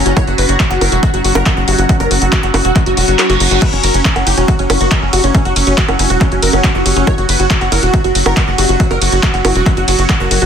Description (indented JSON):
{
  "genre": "psychedelic trance",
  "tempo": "139 BPM",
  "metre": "4/4",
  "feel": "straight",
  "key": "F# major",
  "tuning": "A4 = 441 Hz",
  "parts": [
    { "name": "supersaw stab", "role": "melody", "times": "0.0-10.5 s", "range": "C#4 to C#5", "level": "-18 LUFS", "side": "right 1 dB", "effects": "phaser, sidechain pumping, ping-pong delay" },
    { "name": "overtone-sweeping drone", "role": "sustained chords", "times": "0.0-10.5 s", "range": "F#3", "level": "-22 LUFS", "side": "right 2 dB", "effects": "chorus, built-in reverb, sidechain pumping" },
    { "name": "tight sequencer bass", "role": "bass", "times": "0.0-10.5 s", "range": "E1 to F#1", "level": "-16 LUFS", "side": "equal", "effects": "none" },
    { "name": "granular cloud pad", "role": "texture", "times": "0.0-10.5 s", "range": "C#4 to C#6", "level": "-21 LUFS", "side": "left 2 dB", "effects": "built-in reverb, sidechain pumping" },
    { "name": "woody wave-folded pluck", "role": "riff", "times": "0.1-10.5 s", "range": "E4 to F#5", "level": "-22 LUFS", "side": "moving between left 10 dB and right 5 dB", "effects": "chorus, auto-pan, sidechain pumping, ping-pong delay" },
    { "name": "big-room dance drum kit", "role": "drums", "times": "0.1-10.5 s", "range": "bongos, crash cymbal, handclaps, hi-hat, ride cymbal", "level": "-17 LUFS", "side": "right 1 dB", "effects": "none" },
    { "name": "electronic kick drum", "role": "drums", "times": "0.2-10.2 s", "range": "none", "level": "-14 LUFS", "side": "equal", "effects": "none" },
    { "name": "vowel-sweep wobble bass", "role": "second line", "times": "1.4-2.1, 4.8-9.0 s", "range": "A#3 to F#4", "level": "-30 LUFS", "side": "right 5 dB", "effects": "none" },
    { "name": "reverse cymbal", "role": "sound effects", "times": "2.9-3.6 s", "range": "none", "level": "-21 LUFS", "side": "right 6 dB", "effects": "none" }
  ],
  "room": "little or no reverb",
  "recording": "dense, heavily limited modern master",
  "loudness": "-10 LUFS",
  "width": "side -8 dB against mid",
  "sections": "0.0-10.5 A section",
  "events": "reverse cymbal 2.9-3.6; kick drops out 3.2-3.6",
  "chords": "0.0 F#5"
}